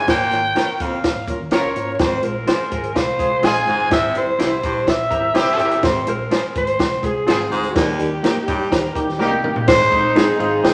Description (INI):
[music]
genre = uptempo 1960s-style soul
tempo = 125 BPM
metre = 4/4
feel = straight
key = unclear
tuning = A4 = 440 Hz
[part]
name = raspy alto saxophone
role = melody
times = 0.0-10.7 s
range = Gb4 to Ab5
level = -22 LUFS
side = equal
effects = none
[part]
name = warm horn section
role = second line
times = 0.0-10.7 s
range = Ab3 to Bb4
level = -27 LUFS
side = equal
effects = none
[part]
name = edgy baritone saxophone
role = riff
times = 0.0-9.9 s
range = Eb2 to C3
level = -29 LUFS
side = equal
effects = none
[part]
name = vintage muted fingered electric bass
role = bass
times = 0.0-10.7 s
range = G1 to Ab2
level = -35 LUFS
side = equal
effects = none
[part]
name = reed electric piano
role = accompaniment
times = 0.1-10.7 s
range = G3 to Eb5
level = -28 LUFS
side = equal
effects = medium tremolo
[part]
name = compact cocktail drum kit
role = drums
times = 0.1-10.7 s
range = crash cymbal, hi-hat, kick drum, ride cymbal, snare drum, toms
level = -22 LUFS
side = equal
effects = none
[part]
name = clean electric guitar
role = stabs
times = 0.6-10.3 s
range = Bb3 to Db5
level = -29 LUFS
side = equal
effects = spring reverb
[part]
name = electric guitar through a small old amp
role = riff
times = 2.5-10.7 s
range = F4 to C5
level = -31 LUFS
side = equal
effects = none
[sound]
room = wet large studio reverb, RT60 1.1 s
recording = vinyl crackle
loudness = -18 LUFS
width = mono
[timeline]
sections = 0.0-9.7 A section; 9.7-10.7 B section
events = drum fill 9.2-9.7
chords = 0.1 Bbm/Ab; 2.0 Fm/Ab; 3.9 C; 5.8 Fm/Ab; 7.8 Eb; 9.7 Ab